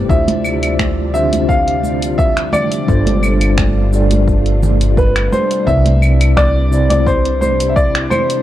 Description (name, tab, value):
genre	sunset chillout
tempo	86 BPM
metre	4/4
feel	straight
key	D minor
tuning	A4 = 440 Hz
part	mellow tine electric piano	accompaniment	0.0-8.4 s	C3 to D5	-20 LUFS	equal	medium stereo tremolo, auto-pan, low-pass filter, tape echo
part	soft string machine	sustained chords	0.0-8.4 s	C3 to D5	-23 LUFS	equal	ensemble chorus
part	warm grand piano	melody	0.1-8.4 s	B4 to F5	-17 LUFS	left 1 dB	tape echo
part	upright bass	bass	0.1-8.1 s	G1 to D2	-15 LUFS	equal	tube saturation
part	deep house drum kit	drums	0.1-8.4 s	cabasa, claves, finger snaps, hi-hat	-22 LUFS	equal	none
part	electronic kick drum	drums	0.1-7.9 s	none	-17 LUFS	equal	none
part	congas	percussion	0.3-8.3 s	none	-23 LUFS	right 3 dB	none
room	digital ambience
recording	dry, gritty hardware recording, cassette tape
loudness	-11 LUFS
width	side -13 dB against mid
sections	0.0-8.4 A section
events	none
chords	0.1 Dm11; 2.9 G9sus4; 5.7 Cmaj9